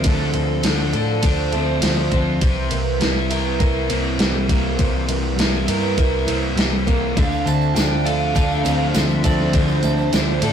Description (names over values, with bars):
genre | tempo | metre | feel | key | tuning
rock, shoegaze and dream pop | 101 BPM | 4/4 | straight | D minor | A4 = 440 Hz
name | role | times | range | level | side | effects
smooth overdriven lead guitar | melody | 0.0-2.1, 7.2-10.5 s | A4 to A5 | -25 LUFS | right 2 dB | none
picked twelve-string acoustic guitar | arpeggios | 0.0-10.5 s | E3 to C4 | -27 LUFS | right 5 dB | none
crunchy overdriven guitar | riff | 0.0-10.5 s | C3 to Bb4 | -24 LUFS | left 4 dB | none
direct-recorded clean electric guitar | riff | 0.0-10.5 s | C3 to Bb4 | -26 LUFS | right 4 dB | none
vintage muted picked electric bass | bass | 0.0-10.5 s | C2 to A2 | -23 LUFS | equal | none
gated 80s digital drum machine | drums | 0.0-10.5 s | kick drum, ride cymbal, snare drum | -22 LUFS | equal | gated reverb, gated reverb snare
crunchy overdriven guitar | riff | 7.2-10.5 s | D3 to D4 | -25 LUFS | right 1 dB | none
tambourine | percussion | 7.2-10.5 s | none | -36 LUFS | right 5 dB | none
room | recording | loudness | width
wet small room reverb, RT60 0.6 s | rough rehearsal-room recording, warm saturation | -16 LUFS | side -8 dB against mid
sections
0.0-10.5 A section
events
none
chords
0.0 Dm7; 2.4 C7; 7.2 Dm7